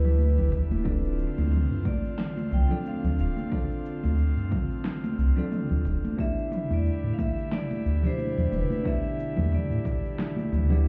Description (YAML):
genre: sunset chillout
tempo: 90 BPM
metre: 4/4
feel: swing 57% on 16ths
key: D dorian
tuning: A4 = 440 Hz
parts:
  - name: vibraphone with medium mallets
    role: melody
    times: 0.0-10.8 s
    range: B4 to G5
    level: -39 LUFS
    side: equal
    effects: tape echo
  - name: bell-like tine electric piano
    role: accompaniment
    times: 0.0-10.9 s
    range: B2 to D5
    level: -37 LUFS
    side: equal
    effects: digital delay
  - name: airy breathy pad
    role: sustained chords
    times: 0.0-10.9 s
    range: D3 to F4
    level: -38 LUFS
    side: equal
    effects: chorus
  - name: warm sub bass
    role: bass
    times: 0.0-10.9 s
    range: D1 to A2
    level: -26 LUFS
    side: equal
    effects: none
  - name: congas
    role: percussion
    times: 0.0-10.9 s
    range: none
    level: -36 LUFS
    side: equal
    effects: none
  - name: deep house drum kit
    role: drums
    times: 0.1-10.9 s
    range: cabasa, snare drum, toms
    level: -36 LUFS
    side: equal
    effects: overdrive, small room reverb
  - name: electronic kick drum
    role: drums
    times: 0.5-10.0 s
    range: none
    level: -33 LUFS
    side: equal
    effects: overdrive, small room reverb
room: light reverb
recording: heard muffled through a wall, club reverb, EQ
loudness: -27 LUFS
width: mono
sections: 0.0-10.9 A section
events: none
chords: 0.0 Em7; 0.9 Dm7; 6.2 Em7